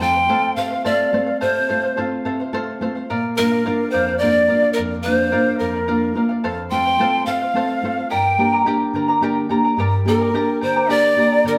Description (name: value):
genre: andean folk, Andean ensemble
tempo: 72 BPM (dotted quarters)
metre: 6/8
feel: straight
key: G minor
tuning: A4 = 440 Hz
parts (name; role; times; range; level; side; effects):
- breathy pan flute; melody; 0.0-11.5 s; Bb4 to G5; -20 LUFS; equal; none
- breathy bright quena; second line; 0.0-11.5 s; Bb4 to C6; -30 LUFS; equal; none
- charango; accompaniment; 0.0-11.6 s; G4 to Bb5; -27 LUFS; equal; none
- nylon-string guitar; accompaniment; 0.0-11.6 s; F2 to G4; -24 LUFS; equal; none
room: wet stone room reverb, RT60 1.2 s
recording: band playing live in one room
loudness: -19 LUFS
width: mono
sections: 0.0-9.8 A section; 9.8-11.6 A section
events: none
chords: 0.0 F; 3.1 Bb; 6.4 F; 8.1 Gm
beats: 0.57 | 1.41 2.25 | 3.09 3.93 | 4.76 5.60 | 6.44 7.28 | 8.12 8.95 | 9.79 10.63 | 11.46